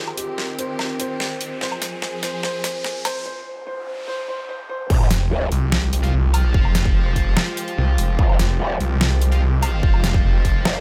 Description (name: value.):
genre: heavy wobble dubstep.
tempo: 146 BPM.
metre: 4/4.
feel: half-time.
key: F minor.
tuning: A4 = 440 Hz.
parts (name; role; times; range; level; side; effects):
dark concert grand piano; melody; 0.0-4.9 s; G4 to C5; -32 LUFS; equal; delay.
clear symphonic string section; sustained chords; 0.0-10.8 s; Eb3 to Ab4; -34 LUFS; equal; sidechain pumping, low-pass filter.
riser, noise sweep and sub drop; sound effects; 0.7-6.5 s; none; -34 LUFS; equal; none.
warbly tape-like pad; texture; 0.0-10.8 s; C4 to Ab5; -38 LUFS; equal; chorus, built-in reverb, sidechain pumping.
dubstep drum kit; drums; 0.1-10.7 s; crash cymbal, hi-hat, snare drum, woodblock; -26 LUFS; equal; overdrive, high-pass filter on hats, high-pass filter on snare, high-pass filter on perc, high-pass filter on cymbals.
growl bass; bass; 4.9-5.5, 8.2-10.8 s; Eb1 to F1; -25 LUFS; equal; chorus, overdrive.
electronic kick drum; drums; 4.9-10.5 s; none; -20 LUFS; equal; none.
snarling distorted saw bass; bass; 5.1-10.6 s; F1 to C2; -21 LUFS; equal; distortion, overdrive.
distorted electric guitar; stabs; 6.0-10.8 s; F4 to F5; -32 LUFS; equal; overdrive, delay.
room: digital ambience.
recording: high-pass filter.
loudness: -20 LUFS.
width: mono.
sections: 0.0-4.9 A section; 4.9-10.8 B section.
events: build-up 0.0-4.9; drum fill 0.0-3.3; riser 0.7-3.3; filter sweep 0.0-4.9; break 3.3-4.9; noise sweep 3.3-4.9; drop 4.9-10.8; impact 4.9-6.5.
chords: 0.0 Cm; 1.6 Fm; 3.3 N.C.; 4.9 Fmadd9.